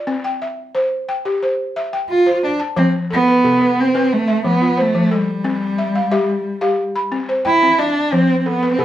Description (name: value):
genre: west african traditional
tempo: 89 BPM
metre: 4/4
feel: straight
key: F lydian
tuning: A4 = 442 Hz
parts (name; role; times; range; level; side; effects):
- balafon; arpeggios; 0.0-8.8 s; C3 to B5; -19 LUFS; left 1 dB; none
- dark cello; melody; 2.1-8.8 s; G3 to F4; -16 LUFS; right 1 dB; none
room: wet studio reverb, RT60 0.6 s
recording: heard from further back in the room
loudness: -15 LUFS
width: side -12 dB against mid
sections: 0.0-2.8 A section; 2.8-8.8 B section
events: none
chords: 0.1 C; 2.8 F; 5.5 C; 8.1 F